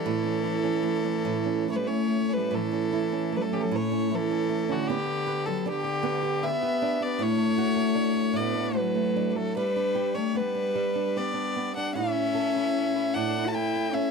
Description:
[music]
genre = celtic folk, Celtic slow air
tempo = 76 BPM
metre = 3/4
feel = rubato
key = A mixolydian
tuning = A4 = 444 Hz
[part]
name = clear fiddle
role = melody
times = 0.0-14.1 s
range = F#4 to A5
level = -29 LUFS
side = equal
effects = none
[part]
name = clear cello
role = second line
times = 0.0-14.1 s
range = D3 to F#4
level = -29 LUFS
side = left 14 dB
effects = none
[part]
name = flamenco guitar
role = accompaniment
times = 0.0-14.1 s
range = A2 to B4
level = -29 LUFS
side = right 14 dB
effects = none
[sound]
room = light reverb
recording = dry, close 1970s-style studio recording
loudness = -24 LUFS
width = side -5 dB against mid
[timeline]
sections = 0.0-2.5 A section; 2.5-14.1 A section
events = none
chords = 0.1 A; 4.9 G; 7.2 D/A; 9.6 G; 12.0 A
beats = | 0.06 0.85 1.68 | 2.52 3.32 4.10 | 4.88 5.65 6.42 | 7.19 7.97 8.76 | 9.56 10.37 11.17 | 11.96 12.75 13.54

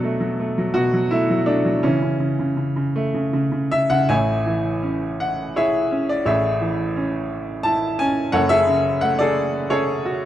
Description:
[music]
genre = classical, lyrical solo piano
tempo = 77-88 BPM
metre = 3/4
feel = rubato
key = A major from 4.1 s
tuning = A4 = 440 Hz
[part]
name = bright baby grand piano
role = solo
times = 0.0-10.3 s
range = F#1 to A5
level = -18 LUFS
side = equal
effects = none
[sound]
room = moderate scoring stage reverb, RT60 1.8 s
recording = dark, warm production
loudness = -18 LUFS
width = side -12 dB against mid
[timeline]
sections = 0.0-4.1 A section; 4.1-10.3 B section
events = none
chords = 0.0 Bm7; 1.8 A/C#; 4.1 Amaj7; 8.3 F#madd9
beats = 0.39 1.11 | 1.84 2.57 3.33 | 4.09 4.82 5.54 | 6.25 6.96 7.65 | 8.33 9.02 9.70

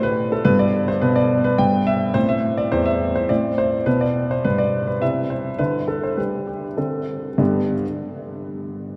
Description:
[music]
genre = classical-period piano sonatina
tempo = 96-108 BPM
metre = 3/4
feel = straight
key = G major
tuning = A4 = 444 Hz
[part]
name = warm grand piano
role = solo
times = 0.0-7.9 s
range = E2 to G5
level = -21 LUFS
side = equal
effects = none
[sound]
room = wet cathedral reverb, RT60 6.1 s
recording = in a vast, echoing space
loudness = -20 LUFS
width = mono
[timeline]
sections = 0.0-7.4 A section; 7.4-9.0 B section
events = slowing down 3.0-7.4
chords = 0.5 G; 2.2 Am; 3.3 Amadd11; 3.9 G/B; 5.0 C; 5.6 G5/D; 6.8 D5; 7.4 G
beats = | 0.46 1.02 1.59 | 2.16 2.72 3.29 | 3.86 4.44 5.01 | 5.59 6.18 6.78 | 7.40

